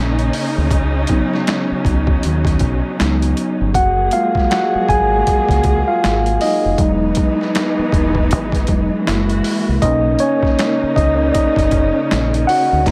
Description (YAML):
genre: R&B, neo-soul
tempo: 79 BPM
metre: 4/4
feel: swing 59% on 16ths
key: unclear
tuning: A4 = 440 Hz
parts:
  - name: mellow tine electric piano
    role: accompaniment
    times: 0.0-12.9 s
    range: F#3 to G#5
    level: -19 LUFS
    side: equal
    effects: plate reverb
  - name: warm symphonic string section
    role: sustained chords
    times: 0.0-12.9 s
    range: C#3 to G#4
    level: -25 LUFS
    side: equal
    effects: plate reverb
  - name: deep dub fingered electric bass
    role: bass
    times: 0.0-12.9 s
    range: E1 to D#2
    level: -21 LUFS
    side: equal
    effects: none
  - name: boom bap sampler-style drum kit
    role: drums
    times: 0.2-12.9 s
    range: crash cymbal, finger snaps, hi-hat, kick drum, snare drum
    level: -22 LUFS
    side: equal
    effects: overdrive
room: light reverb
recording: none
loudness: -16 LUFS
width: mono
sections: 0.0-12.9 A section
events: tine electric piano solo 0.0-12.9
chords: 0.0 Bmaj9 (rootless); 0.7 C#9sus4; 3.7 F#maj9; 6.8 Emaj7; 9.1 F#9; 9.8 Bmaj9 (rootless)